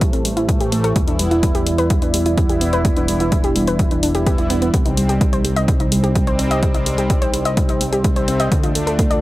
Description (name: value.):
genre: melodic techno.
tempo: 127 BPM.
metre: 4/4.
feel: straight.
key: unclear.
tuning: A4 = 444 Hz.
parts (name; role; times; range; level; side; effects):
dark analog pad; sustained chords; 0.0-9.2 s; G3 to D5; -26 LUFS; equal; chorus, sidechain pumping.
soft round pluck; arpeggios; 0.0-9.2 s; G3 to Eb5; -22 LUFS; equal; chorus, sidechain pumping, analog delay.
brassy analog pad; stabs; 0.0-9.2 s; A2 to E4; -22 LUFS; equal; chorus, sidechain pumping, analog delay.
fat analog bass; bass; 0.0-9.2 s; E1 to D2; -23 LUFS; equal; sidechain pumping.
electronic hi-hat; drums; 0.0-9.2 s; none; -26 LUFS; left 2 dB; sidechain pumping on hats.
electronic kick drum; drums; 0.0-9.1 s; none; -18 LUFS; equal; none.
room: digital ambience.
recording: dry, gritty hardware recording.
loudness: -15 LUFS.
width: side -17 dB against mid.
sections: 0.0-9.2 A section.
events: none.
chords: 0.0 Am7; 1.0 Em7; 4.7 Cm; 8.5 Dm.